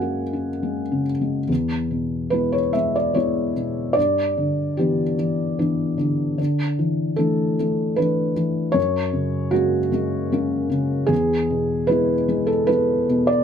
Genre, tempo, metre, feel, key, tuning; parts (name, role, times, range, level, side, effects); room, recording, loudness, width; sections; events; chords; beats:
neoclassical minimalist piano; 75 BPM; 3/4; uneven beats, rubato; E mixolydian; A4 = 440 Hz
felt-muted upright piano; solo; 0.0-13.4 s; E2 to G#5; -19 LUFS; equal
light reverb; close, detailed microphones; -19 LUFS; side -8 dB against mid
0.0-1.5 A section; 1.5-13.4 B section
0.0 F#add9; 1.5 E; 4.0 G6; 6.4 Dsus2; 8.8 F#add9; 11.1 E
0.62 | 1.49 2.33 3.15 | 3.96 4.77 5.58 | 6.39 7.20 7.98 | 8.77 9.55 10.33 | 11.11 11.91 12.70